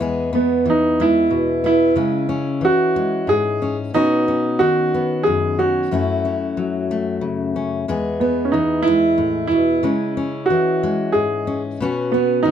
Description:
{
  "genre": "folk",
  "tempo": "92 BPM",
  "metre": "3/4",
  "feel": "straight",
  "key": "E major",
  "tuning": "A4 = 440 Hz",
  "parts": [
    { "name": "fingerpicked steel-string acoustic guitar", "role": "accompaniment", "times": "0.0-12.5 s", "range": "E2 to G#4", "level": "-21 LUFS", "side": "left 4 dB", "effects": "none" },
    { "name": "clear upright piano", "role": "melody", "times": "0.3-12.5 s", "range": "B3 to G#4", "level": "-17 LUFS", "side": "right 3 dB", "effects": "none" }
  ],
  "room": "light reverb",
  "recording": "none",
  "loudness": "-16 LUFS",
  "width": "side -9 dB against mid",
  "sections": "0.0-12.5 A section",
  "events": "none",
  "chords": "0.0 E; 2.0 C#m; 4.0 Badd9; 5.9 F#m7; 7.9 E; 9.9 C#m; 11.8 Bsus2"
}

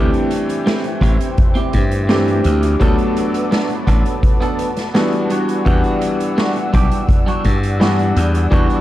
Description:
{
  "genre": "vaporwave",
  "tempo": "84 BPM",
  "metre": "4/4",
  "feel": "straight",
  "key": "E minor",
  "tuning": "A4 = 440 Hz",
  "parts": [
    { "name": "clear electric grand piano", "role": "accompaniment", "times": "0.0-8.8 s", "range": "E3 to F#5", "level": "-19 LUFS", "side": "left 1 dB", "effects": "lush chorus, tape echo" },
    { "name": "lush unison pad", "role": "sustained chords", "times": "0.5-8.8 s", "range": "B4 to E6", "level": "-27 LUFS", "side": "equal", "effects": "chorus" },
    { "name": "clean electric guitar", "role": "riff", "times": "0.0-8.8 s", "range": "G3 to A4", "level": "-24 LUFS", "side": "right 3 dB", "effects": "lush chorus, tape echo" },
    { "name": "glassy slap bass", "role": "bass", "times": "0.0-8.7 s", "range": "A1 to G2", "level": "-17 LUFS", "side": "equal", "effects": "none" },
    { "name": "street-band drum kit", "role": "drums", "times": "0.1-8.8 s", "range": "hi-hat, snare drum", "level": "-22 LUFS", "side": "equal", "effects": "none" },
    { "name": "kick drum", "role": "drums", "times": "1.0-8.7 s", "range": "none", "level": "-16 LUFS", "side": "equal", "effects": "none" }
  ],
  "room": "light reverb",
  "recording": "dark, warm production, cassette tape",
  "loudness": "-14 LUFS",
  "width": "side -14 dB against mid",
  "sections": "0.0-8.8 A section",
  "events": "none",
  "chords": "0.0 D9sus4; 2.8 Bm7; 5.3 Em9"
}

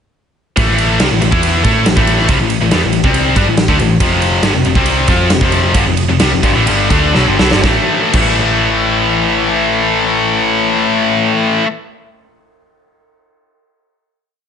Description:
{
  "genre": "hard rock",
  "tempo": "119-140 BPM",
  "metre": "4/4",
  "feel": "straight",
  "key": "A minor",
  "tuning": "A4 = 444 Hz",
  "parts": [
    { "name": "high-gain distorted guitar", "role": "riff", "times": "0.6-11.7 s", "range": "F2 to A4", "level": "-16 LUFS", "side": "right 10 dB", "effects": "distortion" },
    { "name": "tight distorted guitar", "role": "riff", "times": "0.6-11.7 s", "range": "F2 to A4", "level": "-15 LUFS", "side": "left 10 dB", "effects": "distortion" },
    { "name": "hollow-body short-scale picked electric bass", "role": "bass", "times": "0.6-11.2 s", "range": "F1 to A2", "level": "-18 LUFS", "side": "right 1 dB", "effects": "none" },
    { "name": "big rock drum kit", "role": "drums", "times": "0.6-8.3 s", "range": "crash cymbal, kick drum, ride cymbal, snare drum", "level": "-15 LUFS", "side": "right 1 dB", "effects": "none" }
  ],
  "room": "light reverb, small room ambience",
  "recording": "nothing above 10.7 kHz",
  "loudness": "-10 LUFS",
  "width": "side -7 dB against mid",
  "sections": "0.6-7.6 riff; 7.6-11.7 final chord",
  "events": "slowing down 4.0-7.6; drum fill 7.1-7.6",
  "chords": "0.6 Am; 4.0 F5; 7.6 A5"
}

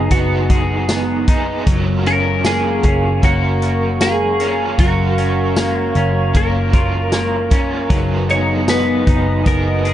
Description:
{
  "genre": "dream pop",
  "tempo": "77 BPM",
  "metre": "4/4",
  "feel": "straight",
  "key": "F# major",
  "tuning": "A4 = 440 Hz",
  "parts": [
    { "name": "clean electric guitar", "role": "melody", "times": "0.0-9.9 s", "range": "F#4 to C#5", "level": "-21 LUFS", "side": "equal", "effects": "analog chorus, digital delay" },
    { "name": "raw garage guitar", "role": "accompaniment", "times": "0.0-9.9 s", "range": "F#3 to A#4", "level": "-24 LUFS", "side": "right 4 dB", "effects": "overdrive, tremolo, ensemble chorus" },
    { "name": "warbly tape-like pad", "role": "sustained chords", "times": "0.0-9.9 s", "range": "B3 to D#6", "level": "-24 LUFS", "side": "right 2 dB", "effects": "chorus, built-in reverb, tremolo" },
    { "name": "electric guitar at the edge of break-up", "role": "arpeggios", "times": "0.0-9.9 s", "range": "F#3 to G#4", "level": "-22 LUFS", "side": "left 3 dB", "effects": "lush chorus, digital delay" },
    { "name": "vintage muted picked electric bass", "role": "bass", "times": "0.0-9.9 s", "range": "F#1", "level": "-19 LUFS", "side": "equal", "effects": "none" },
    { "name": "vintage drum kit", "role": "drums", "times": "0.1-9.9 s", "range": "hi-hat, kick drum, snare drum, tambourine", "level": "-17 LUFS", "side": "equal", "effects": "none" }
  ],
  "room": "light reverb, small room ambience",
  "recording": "nothing above 10.3 kHz",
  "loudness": "-14 LUFS",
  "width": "side -12 dB against mid",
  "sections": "0.0-9.9 A section",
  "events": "none",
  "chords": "0.0 G#m7/F#; 1.7 F#maj7; 7.9 G#m7/F#"
}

